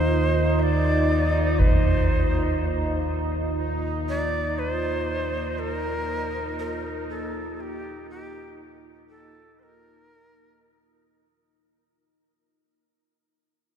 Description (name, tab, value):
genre	dark ambient drone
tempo	60 BPM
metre	4/4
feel	straight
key	unclear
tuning	A4 = 440 Hz
part	breathy bright shakuhachi	melody	0.0-11.1 s	G4 to Fb5	-29 LUFS	equal	ping-pong delay
part	deep dark ambient pad	sustained chords	0.0-11.6 s	Bb3 to F4	-30 LUFS	right 1 dB	chorus, built-in reverb
part	deep rumbling drone	drone	0.0-11.7 s	Eb2 to Eb3	-27 LUFS	equal	built-in reverb, wide subtle chorus
part	bubbling stepped-filter texture	texture	0.0-11.6 s	Eb4	-31 LUFS	right 2 dB	chorus, built-in reverb
part	concert bass drum	percussion	1.6-1.8 s	none	-23 LUFS	equal	low-pass filter on kick
room	moderate huge ambient reverb, RT60 8.9 s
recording	in a vast, echoing space, cassette tape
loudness	-22 LUFS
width	side -8 dB against mid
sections	0.0-11.6 A section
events	fade-out 0.9-11.6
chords	0.0 Ebsus2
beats	0.60 1.60 2.60 | 3.60 4.60 5.60 6.60 | 7.60 8.60 9.60 10.60